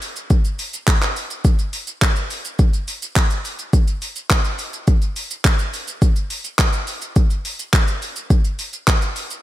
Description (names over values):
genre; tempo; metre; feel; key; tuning
pop; 105 BPM; 4/4; straight; none; none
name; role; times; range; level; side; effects
deep house drum kit; drums; 0.0-9.4 s; handclaps, hi-hat, kick drum, shaker; -17 LUFS; equal; overdrive
room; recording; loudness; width
little or no reverb; none; -17 LUFS; side -14 dB against mid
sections
0.0-9.4 A section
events
none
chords
none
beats
0.30 0.88 | 1.45 2.02 2.59 3.16 | 3.73 4.30 4.88 5.45 | 6.02 6.59 7.16 7.73 | 8.30 8.88